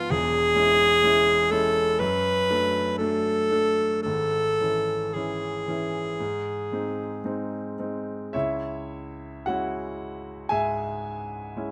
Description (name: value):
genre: classical, romantic duo for alto saxophone and grand piano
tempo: 53-65 BPM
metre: 4/4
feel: rubato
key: C# minor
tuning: A4 = 440 Hz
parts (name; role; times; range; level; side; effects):
- bright alto saxophone; melody; 0.0-7.8 s; F4 to B4; -25 LUFS; equal; none
- clear grand piano; accompaniment; 0.0-11.7 s; E1 to G#5; -31 LUFS; equal; none
room: light reverb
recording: close, detailed microphones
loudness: -25 LUFS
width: mono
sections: 0.0-8.3 A section; 8.3-11.7 B section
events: none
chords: 0.1 C#m/E; 2.0 D/F#; 4.0 C#m/G#; 6.2 G#; 8.3 C#m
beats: | 0.11 1.04 2.01 3.00 | 4.05 5.14 6.20 7.24 | 8.34 9.47 10.51 11.57